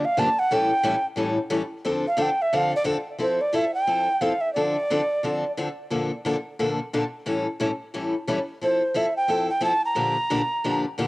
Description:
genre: jazz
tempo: 178 BPM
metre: 4/4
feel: swing 60% on 8ths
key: D minor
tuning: A4 = 441 Hz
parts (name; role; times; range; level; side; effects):
- breathy bright alto ocarina; melody; 0.0-5.5, 8.6-10.8 s; C5 to Bb5; -23 LUFS; right 1 dB; analog delay
- picked steel-string acoustic guitar; accompaniment; 0.0-11.1 s; G2 to A4; -25 LUFS; left 2 dB; cassette tape
room: light reverb, small room ambience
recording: home recording on cassette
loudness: -22 LUFS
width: side -20 dB against mid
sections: 0.0-3.2 A section; 3.2-11.1 B section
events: ocarina solo 0.0-3.2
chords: 0.0 Gm7; 0.5 A7; 1.8 Dm7; 3.2 Fmaj7; 4.5 Dm7; 5.9 Bbmaj7; 7.3 A7; 8.6 Fmaj7; 10.0 Bb6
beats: 0.16 | 0.50 0.84 1.17 1.51 | 1.85 2.18 2.52 2.86 | 3.20 3.53 3.87 4.21 | 4.55 4.88 5.22 5.56 | 5.90 6.24 6.58 6.91 | 7.25 7.59 7.93 8.27 | 8.61 8.94 9.28 9.62 | 9.96 10.30 10.64 10.97

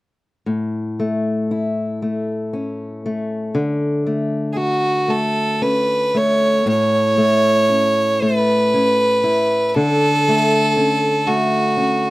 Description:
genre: celtic folk, Celtic slow air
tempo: 39 BPM (dotted quarters)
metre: 6/8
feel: rubato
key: A major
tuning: A4 = 438 Hz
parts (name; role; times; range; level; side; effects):
- fingerpicked steel-string acoustic guitar; accompaniment; 0.5-12.1 s; A2 to F#4; -19 LUFS; left 2 dB; none
- clear fiddle; melody; 4.5-12.1 s; F#4 to C#5; -16 LUFS; right 1 dB; none
room: light reverb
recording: dry, close 1970s-style studio recording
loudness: -15 LUFS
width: side -18 dB against mid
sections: 0.5-6.7 A section; 6.7-12.1 B section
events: none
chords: 0.5 A; 3.5 Dmaj7; 6.7 A; 9.7 Dmaj7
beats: | 0.45 2.01 | 3.54 5.09 | 6.66 8.21 | 9.75 11.26

